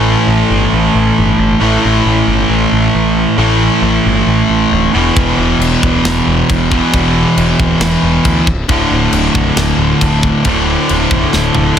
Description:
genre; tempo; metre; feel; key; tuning
heavy metal; 136 BPM; 4/4; straight; unclear; A4 = 440 Hz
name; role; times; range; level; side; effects
distorted electric guitar; riff; 0.0-11.8 s; D2 to A3; -11 LUFS; equal; overdrive
fuzz picked electric bass; bass; 0.0-11.8 s; B0 to D2; -16 LUFS; equal; overdrive
tight metal drum kit; drums; 5.2-11.8 s; crash cymbal, kick drum, snare drum, toms; -17 LUFS; equal; soft clipping on kick, soft clipping on snare
room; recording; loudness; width
light reverb, studio reverb; dense, heavily limited modern master; -9 LUFS; side -8 dB against mid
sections
0.0-11.8 A section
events
drum fill 11.3-11.8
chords
0.0 A5; 4.9 E5; 8.7 D5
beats
0.29 0.73 1.17 | 1.62 2.06 2.50 2.95 | 3.39 3.83 4.27 4.72 | 5.16 5.60 6.04 6.49 | 6.93 7.37 7.81 8.25 | 8.69 9.13 9.57 10.01 | 10.45 10.89 11.32 11.76

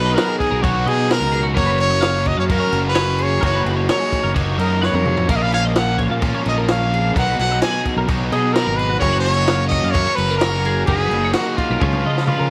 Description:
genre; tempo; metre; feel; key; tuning
math rock and midwest emo; 129 BPM; 4/4; straight; F# major; A4 = 440 Hz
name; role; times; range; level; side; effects
brilliant trumpet; melody; 0.0-12.5 s; E#4 to G#5; -23 LUFS; equal; slapback echo
twelve-string electric guitar; arpeggios; 0.0-12.5 s; F#4 to E#5; -29 LUFS; equal; analog chorus
cranked stack guitar; riff; 0.0-12.5 s; A#2 to B4; -26 LUFS; equal; overdrive
fuzz fingered electric bass; bass; 0.0-12.5 s; F#1 to C#3; -23 LUFS; equal; overdrive
compact cocktail drum kit; drums; 0.2-12.4 s; crash cymbal, kick drum, snare drum, toms; -26 LUFS; equal; none
room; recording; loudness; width
light reverb, small room ambience; none; -18 LUFS; mono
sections
0.0-12.5 A section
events
drum fill 4.8-5.3, 11.8-12.5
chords
0.0 Bmaj7; 1.6 F#6; 5.3 A#m; 7.1 Bmaj7; 9.0 F#; 10.9 D#m7/F#; 11.8 C#13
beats
0.16 0.63 1.09 | 1.56 2.02 2.49 2.96 | 3.42 3.89 4.36 4.82 | 5.29 5.75 6.22 6.68 | 7.15 7.61 8.08 8.55 | 9.01 9.48 9.94 10.41 | 10.88 11.35 11.81 12.28

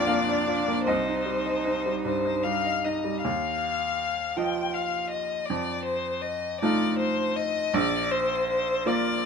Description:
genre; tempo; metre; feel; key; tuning
neoclassical piano and strings; 53 BPM (dotted quarters); 6/8; uneven beats, rubato; Eb major; A4 = 440 Hz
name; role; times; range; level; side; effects
rich violin; melody; 0.0-9.3 s; C5 to G5; -27 LUFS; left 4 dB; none
clear cello; second line; 0.0-2.6 s; D4 to Eb4; -32 LUFS; right 2 dB; none
bright baby grand piano; accompaniment; 0.0-9.3 s; Bb1 to Bb5; -28 LUFS; right 2 dB; none
room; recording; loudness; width
light reverb; minimal, uncompressed stereo recording; -24 LUFS; side -6 dB against mid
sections
0.0-3.2 A section; 3.2-9.3 B section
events
none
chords
0.0 Bb; 0.9 Cm; 3.2 Ebsus2; 5.5 F7; 7.7 Bb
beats
| 0.88 2.06 | 3.24 4.37 | 5.50 6.62 | 7.73 8.86

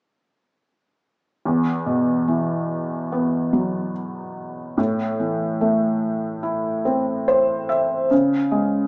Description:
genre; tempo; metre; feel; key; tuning
pop; 72 BPM; 4/4; straight; unclear; A4 = 441 Hz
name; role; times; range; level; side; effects
felt-muted upright piano; accompaniment; 1.5-8.9 s; E2 to E5; -19 LUFS; equal; none
room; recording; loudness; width
moderate large studio reverb, RT60 1.1 s; band playing live in one room, small speaker sound; -19 LUFS; side -37 dB against mid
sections
1.4-8.9 A section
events
felt piano fill 6.9-8.1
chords
1.4 Esus2; 4.8 Am; 8.1 C#5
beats
| 1.45 2.28 3.11 3.95 | 4.78 5.61 6.45 7.28 | 8.11

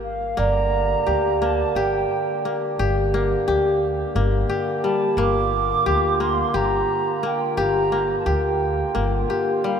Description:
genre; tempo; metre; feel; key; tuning
contemporary instrumental, chamber music in an uneven meter; 174 BPM (eighths); 7/8; straight; G minor; A4 = 441 Hz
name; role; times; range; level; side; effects
mellow hollow silver concert flute; melody; 0.0-9.8 s; F5 to D6; -26 LUFS; right 4 dB; none
kora; arpeggios; 0.0-9.8 s; G3 to G4; -22 LUFS; left 2 dB; none
upright bass; bass; 0.0-9.2 s; G1 to D2; -26 LUFS; equal; none
vibraphone with soft mallets; second line; 0.4-9.6 s; Bb4 to D5; -28 LUFS; right 4 dB; none
hand-pumped harmonium; sustained chords; 0.4-9.8 s; D3 to G4; -28 LUFS; right 1 dB; none
room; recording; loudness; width
wet cathedral reverb, RT60 5.7 s; in a vast, echoing space; -19 LUFS; side -7 dB against mid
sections
0.4-9.8 A section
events
none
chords
0.4 Gm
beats
0.03 | 0.38 0.73 1.08 1.42 1.77 2.11 2.46 | 2.81 3.15 3.49 3.83 4.17 4.51 4.85 | 5.19 5.53 5.87 6.21 6.55 6.89 7.24 | 7.58 7.92 8.27 8.61 8.96 9.30 9.65

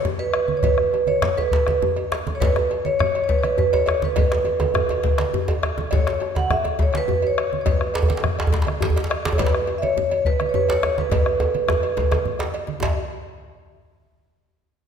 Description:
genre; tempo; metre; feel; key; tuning
west african traditional, West African drum ensemble; 138 BPM (dotted quarters); 12/8; straight; unclear; A4 = 440 Hz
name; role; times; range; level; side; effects
vibraphone with medium mallets; melody; 0.0-13.0 s; B4 to F#5; -22 LUFS; right 2 dB; none
djembe; percussion; 0.0-12.9 s; none; -29 LUFS; left 7 dB; none
bombo; percussion; 0.1-13.0 s; none; -25 LUFS; left 3 dB; none
congas; percussion; 0.1-13.0 s; none; -30 LUFS; right 6 dB; none
cowbell; percussion; 0.2-13.0 s; none; -33 LUFS; right 6 dB; none
djembe; percussion; 1.2-13.0 s; none; -25 LUFS; right 1 dB; none
room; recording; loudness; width
moderate scoring stage reverb, RT60 1.7 s; minimal, uncompressed stereo recording; -18 LUFS; side -7 dB against mid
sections
0.0-12.8 A section; 12.8-14.5 B section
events
speeding up 0.0-14.5; drum fill 11.1-12.8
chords
none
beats
0.20 | 0.64 1.08 1.53 1.97 | 2.41 2.85 3.29 3.73 | 4.17 4.61 5.05 5.49 | 5.92 6.36 6.79 7.23 | 7.66 8.10 8.53 8.96 | 9.39 9.82 10.26 10.69 | 11.11 11.54 11.97 12.40 | 12.82

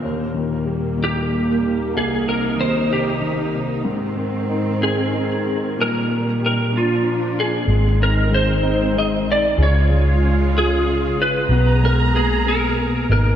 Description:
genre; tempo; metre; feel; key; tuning
pop; 63 BPM (dotted quarters); 6/8; straight; unclear; A4 = 442 Hz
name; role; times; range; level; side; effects
warm concert grand piano; accompaniment; 0.0-13.4 s; C2 to G4; -24 LUFS; left 2 dB; lush chorus
muted studio string section; sustained chords; 0.0-13.4 s; Eb2 to Bb5; -22 LUFS; right 1 dB; none
clean lap steel guitar; melody; 1.0-13.4 s; F4 to Eb5; -22 LUFS; equal; ensemble chorus, tape echo
vintage muted fingered electric bass; bass; 7.7-13.4 s; Ab1 to Db2; -18 LUFS; equal; none
room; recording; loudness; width
wet lush hall reverb, RT60 2.6 s; dreamy mix soaked in reverb; -16 LUFS; side -10 dB against mid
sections
0.0-7.7 A section; 7.7-13.4 B section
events
none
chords
0.0 Eb; 1.9 Cm; 3.9 Ab; 5.8 Eb/Bb; 6.7 Bb; 7.7 Ab; 9.6 Db; 11.5 Abmadd9/Cb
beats
| 0.04 0.99 | 1.95 2.90 | 3.86 4.81 | 5.77 6.72 | 7.68 8.63 | 9.59 10.54 | 11.50 12.45

